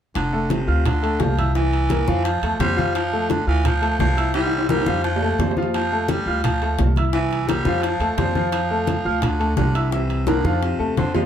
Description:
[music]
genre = latin, salsa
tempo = 172 BPM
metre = 4/4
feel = straight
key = F major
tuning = A4 = 440 Hz
[part]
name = raspy baritone saxophone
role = second line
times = 0.2-11.2 s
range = C3 to G3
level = -24 LUFS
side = right 2 dB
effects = none
[part]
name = upright bass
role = bass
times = 0.2-11.3 s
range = F1 to F2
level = -23 LUFS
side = right 1 dB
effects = none
[part]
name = bongos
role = percussion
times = 0.2-11.3 s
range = none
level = -28 LUFS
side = left 4 dB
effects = none
[part]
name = congas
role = percussion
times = 0.2-11.3 s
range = none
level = -26 LUFS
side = left 1 dB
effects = none
[part]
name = timbales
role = percussion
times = 0.2-11.2 s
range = none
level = -29 LUFS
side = right 3 dB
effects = none
[part]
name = clear grand piano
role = accompaniment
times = 0.3-11.3 s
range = E3 to F6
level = -24 LUFS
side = left 2 dB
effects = none
[sound]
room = wet small room ambience, RT60 0.5 s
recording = heard from further back in the room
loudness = -18 LUFS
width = side -9 dB against mid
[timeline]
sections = 0.2-11.3 A section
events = drum fill 4.3-5.7, 10.3-11.3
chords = 0.2 F; 0.9 Dm7; 1.6 C7; 2.3 F; 3.6 Dm7; 4.3 C7; 5.0 F; 6.4 Dm7; 7.1 C7; 7.8 F; 9.2 Dm7; 9.9 C7; 10.6 F

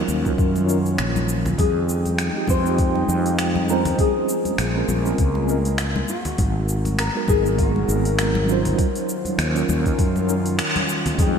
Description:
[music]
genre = sunset chillout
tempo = 100 BPM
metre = 4/4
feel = swing 56% on 16ths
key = unclear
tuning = A4 = 440 Hz
[part]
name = mellow tine electric piano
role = accompaniment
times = 0.0-11.4 s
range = Gb3 to G5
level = -25 LUFS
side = moving between left 4 dB and right 4 dB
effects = medium stereo tremolo, auto-pan, diffuse ambient delay
[part]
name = airy breathy pad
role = sustained chords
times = 0.0-11.4 s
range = Eb3 to G5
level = -28 LUFS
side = right 1 dB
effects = chorus
[part]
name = fretless electric bass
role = bass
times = 0.1-11.4 s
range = Ab1 to Gb2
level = -22 LUFS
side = equal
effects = none
[part]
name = smooth R&B drum kit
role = drums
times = 0.1-11.3 s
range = finger snaps, hi-hat, shaker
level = -28 LUFS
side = equal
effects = none
[part]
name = congas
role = percussion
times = 0.1-11.3 s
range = none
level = -30 LUFS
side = left 4 dB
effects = none
[part]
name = electronic kick drum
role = drums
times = 0.3-11.3 s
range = none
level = -21 LUFS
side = equal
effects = none
[part]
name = nylon-string guitar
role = melody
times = 1.6-11.4 s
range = F4 to C5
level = -27 LUFS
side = left 4 dB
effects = wide subtle chorus, analog delay
[sound]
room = moderate lush hall reverb, RT60 2.8 s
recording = dreamy mix soaked in reverb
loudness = -18 LUFS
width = side -7 dB against mid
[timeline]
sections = 0.0-11.2 A section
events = band accent 10.6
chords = 0.0 Ebm9; 1.6 Fm9; 4.0 Bbm9; 6.4 Abm9; 8.8 Ebm9

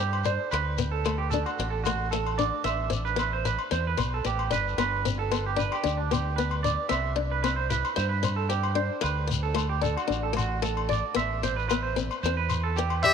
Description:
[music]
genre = highlife guitar band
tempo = 113 BPM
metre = 4/4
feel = straight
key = unclear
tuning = A4 = 439 Hz
[part]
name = picked steel-string acoustic guitar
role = accompaniment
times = 0.0-13.1 s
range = A3 to E4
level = -31 LUFS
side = left 10 dB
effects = none
[part]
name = clean electric guitar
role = arpeggios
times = 0.0-13.1 s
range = D4 to E5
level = -29 LUFS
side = right 11 dB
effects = tape echo
[part]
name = deep dub fingered electric bass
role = bass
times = 0.0-13.1 s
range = G1 to G2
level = -30 LUFS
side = equal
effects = none
[part]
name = agogo bells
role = percussion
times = 0.1-13.0 s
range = none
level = -37 LUFS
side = left 10 dB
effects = none
[part]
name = shekere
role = percussion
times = 0.2-13.1 s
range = none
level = -35 LUFS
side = left 6 dB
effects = none
[part]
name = trumpet with metal mute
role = melody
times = 13.0-13.1 s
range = E5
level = -18 LUFS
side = equal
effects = none
[part]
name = growling tenor saxophone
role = second line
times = 13.1 s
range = G4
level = -26 LUFS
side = left 14 dB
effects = none
[sound]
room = moderate plate reverb, RT60 3.8 s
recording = 1960s-style stereo with parts hard left and right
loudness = -25 LUFS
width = side -7 dB against mid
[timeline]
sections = 0.0-13.1 A section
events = none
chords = 0.0 C5; 0.5 D; 2.7 Amadd9; 4.8 G; 6.9 C; 9.0 D; 11.2 Amadd9

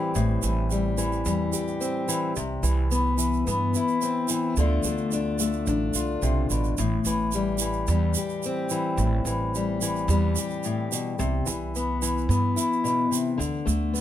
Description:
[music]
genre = acoustic folk duo or small band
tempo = 109 BPM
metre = 4/4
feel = straight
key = A minor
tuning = A4 = 440 Hz
[part]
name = fingerpicked steel-string acoustic guitar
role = accompaniment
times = 0.0-14.0 s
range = A2 to G4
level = -25 LUFS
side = left 3 dB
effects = none
[part]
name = upright bass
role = bass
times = 0.2-14.0 s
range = A1 to G2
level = -26 LUFS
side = right 2 dB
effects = none
[part]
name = tube shaker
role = percussion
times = 0.2-14.0 s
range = none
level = -32 LUFS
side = right 10 dB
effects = none
[sound]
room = light reverb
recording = close, detailed microphones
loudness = -23 LUFS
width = side -11 dB against mid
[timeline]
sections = 0.0-14.0 A section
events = none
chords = 0.0 Am7; 2.4 Cmaj7; 4.6 Dm; 6.8 Am7; 11.2 Cmaj7; 13.4 D5

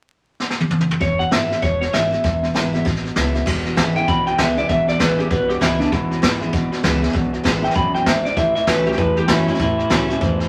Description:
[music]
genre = rockabilly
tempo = 196 BPM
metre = 4/4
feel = swing 61% on 8ths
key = E major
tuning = A4 = 440 Hz
[part]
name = jazz brush drum kit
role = drums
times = 0.4-10.4 s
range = crash cymbal, hi-hat, kick drum, snare drum, toms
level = -23 LUFS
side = equal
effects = none
[part]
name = electric guitar through a small old amp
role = melody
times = 1.0-10.5 s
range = D4 to B5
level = -23 LUFS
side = equal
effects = none
[part]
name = picked steel-string acoustic guitar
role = accompaniment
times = 1.0-10.5 s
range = E2 to E4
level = -25 LUFS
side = equal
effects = none
[part]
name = electric guitar through a small old amp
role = riff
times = 1.0-10.5 s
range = E2 to F#3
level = -28 LUFS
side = equal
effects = none
[part]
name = upright bass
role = bass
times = 1.0-10.4 s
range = E1 to F#2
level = -30 LUFS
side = equal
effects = none
[sound]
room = wet studio reverb, RT60 0.8 s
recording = vinyl crackle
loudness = -19 LUFS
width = mono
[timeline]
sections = 0.0-1.0 A section; 1.0-3.5 B section; 3.5-10.5 C section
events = drum fill 0.4-1.0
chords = 0.0 N.C.; 1.0 E; 8.4 A

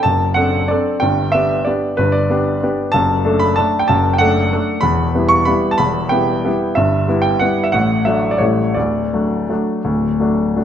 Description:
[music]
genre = classical, piano waltz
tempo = 163-198 BPM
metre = 3/4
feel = rubato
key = D major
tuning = A4 = 441 Hz
[part]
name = clear grand piano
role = solo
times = 0.0-10.6 s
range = D1 to C#6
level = -14 LUFS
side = equal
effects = none
[sound]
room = moderate recital hall reverb, RT60 1.7 s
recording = none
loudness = -14 LUFS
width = side -9 dB against mid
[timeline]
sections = 0.0-10.6 A section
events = none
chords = 0.0 D7/F#; 1.0 G; 2.9 D/F#; 4.8 Em; 6.8 Em/G; 7.7 D/A; 8.4 A7; 8.8 D

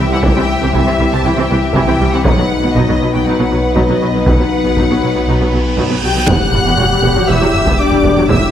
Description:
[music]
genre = cinematic, hybrid orchestral and electronic film score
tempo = 119 BPM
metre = 4/4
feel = straight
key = E minor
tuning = A4 = 440 Hz
[part]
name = rich symphonic violin section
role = melody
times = 0.0-8.5 s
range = D#5 to G6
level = -21 LUFS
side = left 3 dB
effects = none
[part]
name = warm symphonic violin section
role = second line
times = 0.0-8.5 s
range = G4 to G5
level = -21 LUFS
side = left 1 dB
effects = none
[part]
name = warm symphonic viola section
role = accompaniment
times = 0.0-8.5 s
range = E3 to G4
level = -19 LUFS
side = right 1 dB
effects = none
[part]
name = mellow French horn section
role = sustained chords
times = 0.0-8.5 s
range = G3 to G4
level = -18 LUFS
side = left 4 dB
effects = none
[part]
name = dark symphonic double bass section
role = bass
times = 0.0-8.3 s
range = E1 to C2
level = -20 LUFS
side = right 2 dB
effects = none
[part]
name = swelling detuned saw bass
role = bass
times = 0.0-8.5 s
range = E1 to C2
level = -20 LUFS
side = equal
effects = none
[part]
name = warm symphonic cello section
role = bass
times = 0.0-8.3 s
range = E2 to C3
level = -20 LUFS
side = right 2 dB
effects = none
[part]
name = taiko ensemble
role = drums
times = 0.2-8.5 s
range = none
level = -18 LUFS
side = equal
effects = none
[part]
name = reverse cymbal and impact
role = sound effects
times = 5.1-8.3 s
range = none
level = -25 LUFS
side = right 1 dB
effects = none
[sound]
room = wet scoring stage reverb, RT60 1.9 s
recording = none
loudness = -11 LUFS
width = side -10 dB against mid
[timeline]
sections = 0.0-6.3 A section; 6.3-8.5 B section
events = reverse cymbal 5.1-6.3; impact 6.3-8.3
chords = 0.0 C; 2.2 B; 6.3 Emadd9

